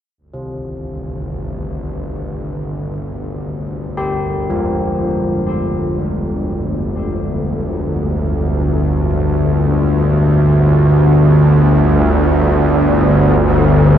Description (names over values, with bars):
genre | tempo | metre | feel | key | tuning
dark ambient drone | free time | none | none | unclear | A4 = 439 Hz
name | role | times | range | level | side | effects
bowed-like drone | drone | 0.5-14.0 s | G1 to D2 | -13 LUFS | equal | built-in reverb
carillon bells | arpeggios | 0.3-10.5 s | C3 to G4 | -24 LUFS | left 1 dB | diffuse ambient delay
room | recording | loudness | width
wet cathedral reverb, RT60 5.0 s | worn, warbling old tape, cassette tape, warbly pitch drift | -13 LUFS | side -10 dB against mid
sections
0.2-14.0 A section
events
fade-in on synth drone 0.2-14.0; fade-in on church bells 0.2-14.0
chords
0.2 G5